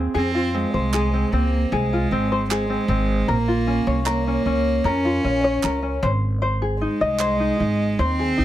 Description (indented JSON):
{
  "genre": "acoustic pop",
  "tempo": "76 BPM",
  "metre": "4/4",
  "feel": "straight",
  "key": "unclear",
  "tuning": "A4 = 439 Hz",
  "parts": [
    { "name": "tenor ukulele", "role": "accompaniment", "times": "0.0-8.4 s", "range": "C4 to Eb5", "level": "-23 LUFS", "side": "left 3 dB", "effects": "plate reverb" },
    { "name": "upright bass", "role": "bass", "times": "0.0-8.4 s", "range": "Ab1 to F2", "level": "-24 LUFS", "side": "equal", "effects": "none" },
    { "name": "warm cello", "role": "melody", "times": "0.2-8.4 s", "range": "Ab3 to Db4", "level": "-23 LUFS", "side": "right 3 dB", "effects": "plate reverb" },
    { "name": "group handclap", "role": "percussion", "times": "0.9-7.4 s", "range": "none", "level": "-28 LUFS", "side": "right 8 dB", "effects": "none" }
  ],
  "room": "light reverb",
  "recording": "none",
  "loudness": "-19 LUFS",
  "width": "side -13 dB against mid",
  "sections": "0.2-8.4 A section",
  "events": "none",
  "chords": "0.2 Fm; 3.3 Bbm; 6.0 Ab"
}